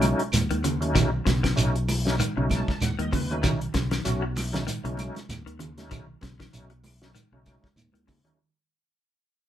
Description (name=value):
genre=afrobeat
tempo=97 BPM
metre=4/4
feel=swing 56% on 16ths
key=B mixolydian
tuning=A4 = 443 Hz
part: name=bright tonewheel organ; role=accompaniment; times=0.0-8.4 s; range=F#3 to A5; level=-30 LUFS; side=equal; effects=overdrive, chorus vibrato, fast rotary speaker
part: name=clean electric guitar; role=arpeggios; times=0.0-8.3 s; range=C#3 to F#3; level=-33 LUFS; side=left 4 dB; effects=spring reverb
part: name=fingered electric bass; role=bass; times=0.0-8.2 s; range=B1 to D#2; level=-28 LUFS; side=equal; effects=none
part: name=warm soul drum kit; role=drums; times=0.0-8.4 s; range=hi-hat, kick drum, snare drum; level=-29 LUFS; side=left 1 dB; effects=none
part: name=claves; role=percussion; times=0.0-8.0 s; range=none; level=-38 LUFS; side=right 5 dB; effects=none
part: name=congas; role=percussion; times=0.0-8.4 s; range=none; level=-32 LUFS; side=right 3 dB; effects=none
part: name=shekere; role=percussion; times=0.0-8.3 s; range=none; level=-30 LUFS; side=right 3 dB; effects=none
room=moderate small room reverb, RT60 0.5 s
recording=band playing live in one room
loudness=-23 LUFS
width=side -11 dB against mid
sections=0.0-8.4 A section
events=fade-out 0.0-8.4; tonewheel organ fill 2.2-3.4; drum fill 7.9-8.4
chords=0.0 B7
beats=0.33 | 0.95 1.57 2.19 2.81 | 3.43 4.05 4.67 5.29 | 5.91 6.53 7.15 7.77